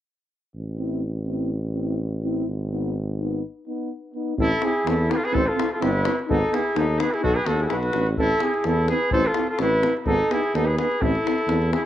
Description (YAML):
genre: balkan folk, Balkan brass band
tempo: 127 BPM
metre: 2/4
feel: swing 53% on 16ths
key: A hungarian minor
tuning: A4 = 435 Hz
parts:
  - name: warm tuba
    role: bass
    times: 0.6-11.7 s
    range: G1 to E2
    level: -25 LUFS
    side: equal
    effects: none
  - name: dark euphonium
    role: accompaniment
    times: 0.8-11.8 s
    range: D#4 to E4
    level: -31 LUFS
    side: left 7 dB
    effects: cassette tape
  - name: mellow euphonium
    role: accompaniment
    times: 0.8-11.8 s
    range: B3 to C4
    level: -31 LUFS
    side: right 7 dB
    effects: cassette tape
  - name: mellow flugelhorn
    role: melody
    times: 4.4-11.8 s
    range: G#4 to C5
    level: -24 LUFS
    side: equal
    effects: cassette tape
  - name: bright trumpet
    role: second line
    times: 4.4-11.8 s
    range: D#4 to A4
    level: -27 LUFS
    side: equal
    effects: cassette tape
  - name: davul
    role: percussion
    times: 4.4-11.8 s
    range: none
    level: -30 LUFS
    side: left 4 dB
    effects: none
room: moderate spring reverb, RT60 1.4 s, small room ambience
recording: home recording on cassette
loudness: -21 LUFS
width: side -12 dB against mid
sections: 0.6-4.4 A section; 4.4-11.9 B section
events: break 3.4-4.4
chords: 0.6 Am; 2.5 G#m; 3.4 B; 4.4 Am; 6.3 G#m; 7.2 B; 8.2 Am; 10.1 G#m; 11.0 Am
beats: | 0.55 1.03 | 1.51 1.99 | 2.47 2.95 | 3.43 3.91 | 4.38 4.86 | 5.33 5.81 | 6.28 6.76 | 7.23 7.70 | 8.18 8.65 | 9.12 9.60 | 10.07 10.54 | 11.01 11.48